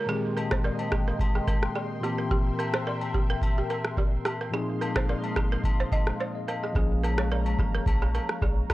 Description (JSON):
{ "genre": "afrobeats", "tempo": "108 BPM", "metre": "4/4", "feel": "swing 55% on 16ths", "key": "Bb dorian", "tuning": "A4 = 440 Hz", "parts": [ { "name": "bright tine electric piano", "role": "accompaniment", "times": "0.0-8.7 s", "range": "Bb2 to F5", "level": "-32 LUFS", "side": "left 2 dB", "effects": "medium stereo tremolo" }, { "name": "lush unison pad", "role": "sustained chords", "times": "0.0-8.7 s", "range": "Ab3 to C6", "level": "-35 LUFS", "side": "left 2 dB", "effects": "chorus, phaser, sidechain pumping" }, { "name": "balafon", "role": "riff", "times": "0.0-8.7 s", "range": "G4 to Eb5", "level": "-34 LUFS", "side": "right 4 dB", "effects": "tape echo" }, { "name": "agogo bells and woodblock", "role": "percussion", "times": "0.4-8.7 s", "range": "none", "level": "-37 LUFS", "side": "left 3 dB", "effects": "none" }, { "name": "booming analog drum machine", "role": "drums", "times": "0.5-8.7 s", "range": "kick drum, rim click", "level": "-26 LUFS", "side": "equal", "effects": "none" }, { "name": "punchy sub bass", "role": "bass", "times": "6.8-8.7 s", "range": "Ab1 to Bb1", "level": "-28 LUFS", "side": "equal", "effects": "none" } ], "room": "little or no reverb", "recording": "dry, gritty hardware recording, transformer saturation", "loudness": "-25 LUFS", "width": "side -17 dB against mid", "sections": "0.0-8.7 A section", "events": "none", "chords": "0.1 Abmaj7/Bb; 2.0 C7/Bb; 4.5 Fm7/Bb; 6.8 Bbm7" }